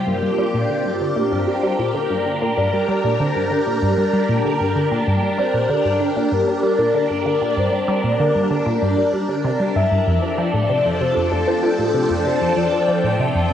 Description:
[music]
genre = ambient, sequencer-driven space music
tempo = 96 BPM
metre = 4/4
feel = straight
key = G minor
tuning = A4 = 438 Hz
[part]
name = phased string machine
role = sustained chords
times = 0.0-13.5 s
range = F3 to G5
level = -20 LUFS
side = right 1 dB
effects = ensemble chorus, phaser, cassette tape
[part]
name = resonant blip pluck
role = riff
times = 0.0-13.5 s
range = F2 to G3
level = -21 LUFS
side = equal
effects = phaser, cassette tape, ping-pong delay
[part]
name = soft octave-layered synth lead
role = melody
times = 0.1-13.5 s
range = A4 to E5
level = -23 LUFS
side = left 4 dB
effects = chorus, phaser, cassette tape, ping-pong delay
[sound]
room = wet spring reverb, RT60 2.4 s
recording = home recording on cassette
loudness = -16 LUFS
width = side -9 dB against mid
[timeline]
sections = 0.0-13.5 A section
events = none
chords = 0.1 Gm; 10.1 F6

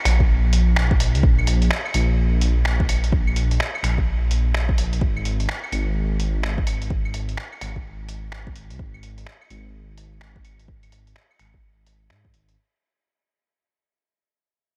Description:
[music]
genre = future garage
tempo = 127 BPM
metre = 4/4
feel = swing 63% on 16ths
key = unclear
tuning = A4 = 441 Hz
[part]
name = dark detuned saw bass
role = bass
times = 0.1-12.6 s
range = Ab1 to Ab2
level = -23 LUFS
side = equal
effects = sidechain pumping
[part]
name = lo-fi sampler-style drum kit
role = drums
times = 0.1-12.6 s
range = claves, finger snaps, hi-hat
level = -30 LUFS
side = equal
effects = none
[part]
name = electronic kick drum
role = drums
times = 0.2-12.3 s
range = none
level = -23 LUFS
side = equal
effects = overdrive
[sound]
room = little or no reverb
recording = vinyl crackle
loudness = -21 LUFS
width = mono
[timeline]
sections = 0.0-12.6 A section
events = fade-out 0.0-12.6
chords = none

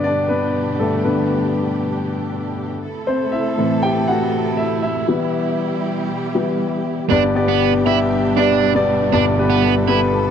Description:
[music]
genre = pop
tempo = 119 BPM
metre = 4/4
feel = straight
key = G major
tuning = A4 = 440 Hz
[part]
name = warm concert grand piano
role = accompaniment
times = 0.0-10.3 s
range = G1 to G5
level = -17 LUFS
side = left 2 dB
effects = none
[part]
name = warm studio string section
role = sustained chords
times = 0.0-10.3 s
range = B2 to A4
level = -25 LUFS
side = right 5 dB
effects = none
[part]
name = overdriven electric guitar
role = riff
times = 7.1-10.0 s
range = B3 to E4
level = -19 LUFS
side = right 18 dB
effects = none
[sound]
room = light reverb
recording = dry, close 1970s-style studio recording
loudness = -16 LUFS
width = side -8 dB against mid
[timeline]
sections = 0.0-7.1 A section; 7.1-10.3 B section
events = grand piano solo 0.0-7.1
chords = 0.0 G; 2.8 Am; 5.1 Em; 7.1 G

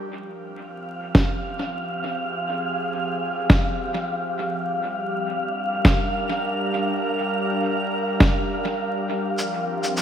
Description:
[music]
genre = ambient dub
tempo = 102 BPM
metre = 4/4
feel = swing 53% on 16ths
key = F dorian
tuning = A4 = 439 Hz
[part]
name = airy breathy pad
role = sustained chords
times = 0.0-10.0 s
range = F3 to Bb4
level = -28 LUFS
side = equal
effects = chorus
[part]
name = wind-like tuned noise texture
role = texture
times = 0.7-10.0 s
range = F5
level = -27 LUFS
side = right 1 dB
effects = built-in reverb
[part]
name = electronic kick drum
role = drums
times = 1.1-8.3 s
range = none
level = -20 LUFS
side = equal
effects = studio ambience
[part]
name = electronic snare drum and cabasa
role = drums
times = 1.1-10.0 s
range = none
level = -22 LUFS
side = equal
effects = studio ambience, dub echo
[sound]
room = light reverb, digital ambience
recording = vinyl crackle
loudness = -21 LUFS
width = side -9 dB against mid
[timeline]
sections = 0.0-10.0 A section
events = fade-in on analog synth pad 0.0-10.0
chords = 0.0 Fmadd9; 4.7 Gm7; 9.4 Fsus2

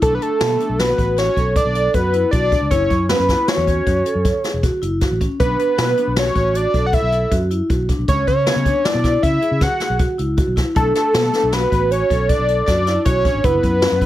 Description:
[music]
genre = progressive instrumental, band music in an uneven meter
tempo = 156 BPM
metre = 7/4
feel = straight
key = B dorian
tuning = A4 = 439 Hz
[part]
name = fat analog lead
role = melody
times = 0.0-14.1 s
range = A4 to F#5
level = -18 LUFS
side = equal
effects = phaser
[part]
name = vibraphone with medium hard mallets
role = arpeggios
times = 0.0-14.1 s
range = B3 to A4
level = -23 LUFS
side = equal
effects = none
[part]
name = fingered electric bass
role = bass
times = 0.0-14.1 s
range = E1 to C#3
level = -21 LUFS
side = equal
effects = none
[part]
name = jazz brush drum kit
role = drums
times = 0.0-14.1 s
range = hi-hat, kick drum, snare drum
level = -21 LUFS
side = equal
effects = none
[sound]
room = light reverb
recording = faint mains hum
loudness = -15 LUFS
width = side -14 dB against mid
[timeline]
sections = 0.0-14.1 A section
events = none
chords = 0.0 Bm7; 2.7 F#7sus4; 5.4 Bm7; 8.1 C#m7; 10.8 Bm7; 13.4 F#7sus4

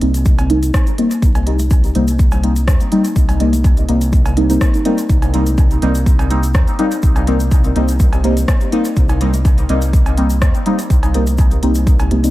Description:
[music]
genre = dub techno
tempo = 124 BPM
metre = 4/4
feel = straight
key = C minor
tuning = A4 = 441 Hz
[part]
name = deep mellow chord stab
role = stabs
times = 0.0-12.3 s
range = G3 to Eb4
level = -17 LUFS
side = equal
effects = chorus, phaser, sidechain pumping, dub echo
[part]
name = round analog bass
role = bass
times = 0.0-12.3 s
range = C2 to Eb2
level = -16 LUFS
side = equal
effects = tube saturation, sidechain pumping
[part]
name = deep house drum kit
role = drums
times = 0.0-12.3 s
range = hi-hat, rim click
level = -28 LUFS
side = equal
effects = small room ambience, dub echo
[part]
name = egg shaker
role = percussion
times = 0.1-12.3 s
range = none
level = -33 LUFS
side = left 2 dB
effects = none
[part]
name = electronic kick drum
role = drums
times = 0.3-12.0 s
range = none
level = -13 LUFS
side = equal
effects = small room ambience
[part]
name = cowbell and congas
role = percussion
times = 0.4-12.2 s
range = none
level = -31 LUFS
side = right 2 dB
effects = sidechain pumping on perc, small room ambience, dub echo
[sound]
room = moderate plate reverb, RT60 1.9 s, digital ambience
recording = dreamy mix soaked in reverb, vinyl crackle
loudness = -12 LUFS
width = side -16 dB against mid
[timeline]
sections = 0.0-12.3 A section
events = none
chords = 0.0 Cm7

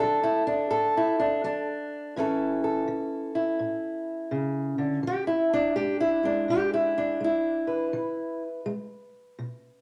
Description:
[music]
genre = acoustic country blues, solo or duo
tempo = 83 BPM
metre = 4/4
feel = swing 65% on 8ths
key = A major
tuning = A4 = 440 Hz
[part]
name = fingerpicked steel-string acoustic guitar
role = solo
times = 0.0-9.8 s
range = A2 to B4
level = -27 LUFS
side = equal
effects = none
[sound]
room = moderate large studio reverb, RT60 0.8 s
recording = none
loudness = -27 LUFS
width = mono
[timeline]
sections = 0.0-9.8 A section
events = none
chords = 0.0 D; 2.2 A; 5.0 E

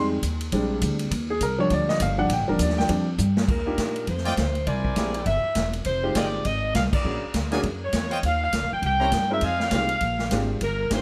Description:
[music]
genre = jazz, big band swing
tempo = 202 BPM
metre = 4/4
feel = swing 60% on 8ths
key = Eb major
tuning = A4 = 440 Hz
[part]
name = clear baby grand piano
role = accompaniment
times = 0.0-11.0 s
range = F3 to G5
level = -28 LUFS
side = equal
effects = none
[part]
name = upright bass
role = bass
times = 0.0-11.0 s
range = Eb1 to Bb2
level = -29 LUFS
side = equal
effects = none
[part]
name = swinging big-band drum kit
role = drums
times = 0.2-11.0 s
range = crash cymbal, hi-hat, kick drum, ride cymbal, snare drum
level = -31 LUFS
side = equal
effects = none
[part]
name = warm saxophone section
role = melody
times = 3.5-11.0 s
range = Bb4 to G5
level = -29 LUFS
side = equal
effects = none
[part]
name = clear trumpet section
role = stabs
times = 4.2-9.9 s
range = E4 to Bb5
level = -35 LUFS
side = equal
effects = none
[sound]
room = light reverb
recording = none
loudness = -24 LUFS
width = mono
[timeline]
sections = 0.0-3.5 A section; 3.5-11.0 B section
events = grand piano solo 0.0-3.5; drum fill 3.2; band accent 6.9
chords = 0.0 Fm7; 0.5 Bb13; 1.1 Ebmaj9; 4.7 C7b13; 5.9 Fm9; 7.0 Bb7alt; 8.2 Ebsus2; 8.8 C7b9; 9.4 Fm7; 10.0 Bb13

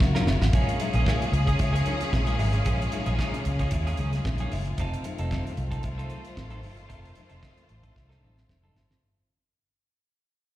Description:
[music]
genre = disco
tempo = 113 BPM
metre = 4/4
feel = straight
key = unclear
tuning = A4 = 440 Hz
[part]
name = clean electric guitar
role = accompaniment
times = 0.0-8.9 s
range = A#3 to A#4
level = -36 LUFS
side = right 3 dB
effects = lush chorus, plate reverb, slapback echo
[part]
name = rich studio string section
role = sustained chords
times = 0.0-9.0 s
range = C#3 to F#4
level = -36 LUFS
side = equal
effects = plate reverb
[part]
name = fingered electric bass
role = bass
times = 0.0-9.0 s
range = F1 to D#2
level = -26 LUFS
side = equal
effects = none
[part]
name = damped 70s drum kit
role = drums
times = 0.0-9.0 s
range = hi-hat, kick drum, snare drum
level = -28 LUFS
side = equal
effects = none
[part]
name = congas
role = percussion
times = 0.0-8.9 s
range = none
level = -36 LUFS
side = left 5 dB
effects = slapback echo
[part]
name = cowbell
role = percussion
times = 0.0-8.9 s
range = none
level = -40 LUFS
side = left 2 dB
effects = slapback echo
[part]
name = bright studio violin section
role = second line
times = 0.5-9.0 s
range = A3 to C5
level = -34 LUFS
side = left 1 dB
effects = plate reverb, slapback echo
[sound]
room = light reverb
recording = live gig heard through the venue's PA, recital hall reverb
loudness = -24 LUFS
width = side -14 dB against mid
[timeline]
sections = 0.5-9.0 A section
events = drum fill 0.0-0.5, 8.0-9.0; fade-out 0.5-9.0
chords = 0.0 F#maj7; 0.5 A#m7; 4.8 F7

